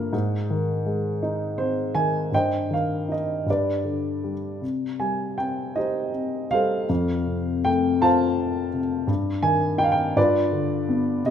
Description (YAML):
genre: classical, lyrical solo piano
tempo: 54 BPM (dotted quarters)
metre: 6/8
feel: rubato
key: C minor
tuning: A4 = 440 Hz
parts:
  - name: dark baby grand piano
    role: solo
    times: 0.0-11.3 s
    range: F2 to A5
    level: -21 LUFS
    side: equal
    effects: none
room: moderate scoring stage reverb, RT60 1.7 s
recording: minimal, uncompressed stereo recording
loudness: -21 LUFS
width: side -8 dB against mid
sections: 0.0-11.3 A section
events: none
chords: 0.1 Ab; 2.3 Cm/G; 3.5 G; 4.6 Cm; 6.9 F; 9.1 Fm9/G; 10.2 G7